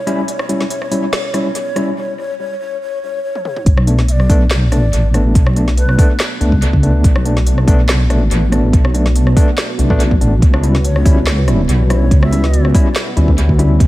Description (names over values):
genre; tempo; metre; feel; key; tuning
deep dubstep; 142 BPM; 4/4; swing 53% on 16ths, half-time; B minor; A4 = 440 Hz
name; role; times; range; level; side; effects
breathy low ney; melody; 0.0-6.1, 10.8-12.6 s; B4 to E5; -24 LUFS; left 1 dB; dub echo
dark analog pad; sustained chords; 0.0-13.9 s; B3 to F#4; -24 LUFS; right 2 dB; chorus
overdriven tine electric piano; stabs; 0.1-13.8 s; G3 to E4; -20 LUFS; left 1 dB; fast tremolo, dub echo
deep house drum kit; drums; 0.1-13.9 s; handclaps, hi-hat, rim click, snare drum, toms; -22 LUFS; equal; high-pass filter on snare, high-pass filter on hats, high-pass filter on toms, analog delay
deep soft wobble bass; bass; 3.7-13.9 s; A1 to D2; -13 LUFS; equal; chorus
electronic kick drum; drums; 3.7-13.9 s; none; -11 LUFS; equal; none
room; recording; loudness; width
light reverb, digital ambience; echo-heavy mix, vinyl crackle; -11 LUFS; side -17 dB against mid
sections
0.0-3.7 A section; 3.7-13.9 B section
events
build-up 0.0-3.7; filter sweep on analog synth pad 0.0-3.7; break 2.0-3.7; drum fill 3.3-3.7; drop 3.7-13.9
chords
0.0 C#dim; 3.7 Bm7; 10.4 C#dim